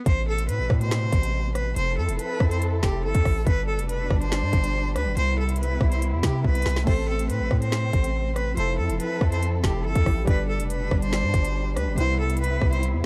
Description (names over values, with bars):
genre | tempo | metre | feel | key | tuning
hip hop, drill | 141 BPM | 4/4 | half-time | A minor | A4 = 440 Hz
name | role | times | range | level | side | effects
clear cello | melody | 0.0-12.8 s | G4 to C5 | -31 LUFS | equal | tape echo
dark chamber string section | sustained chords | 0.1-13.1 s | B2 to A4 | -35 LUFS | equal | none
hard-hitting 808-style bass | bass | 0.1-13.0 s | F1 to C3 | -28 LUFS | equal | none
drill drum kit | drums | 0.1-12.9 s | crash cymbal, finger snaps, hi-hat, kick drum, rim click, snare drum | -26 LUFS | equal | none
glassy digital keys | accompaniment | 6.8-13.1 s | C3 to D5 | -34 LUFS | equal | chorus
room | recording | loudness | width
little or no reverb | dark, warm production | -24 LUFS | mono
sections
0.1-13.1 A section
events
drum fill 6.4-6.9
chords
0.1 Amadd9; 1.8 Fmaj7; 3.5 G; 5.2 Cmaj7; 6.9 Am; 8.6 Fmaj7; 10.3 G; 12.0 Cmaj7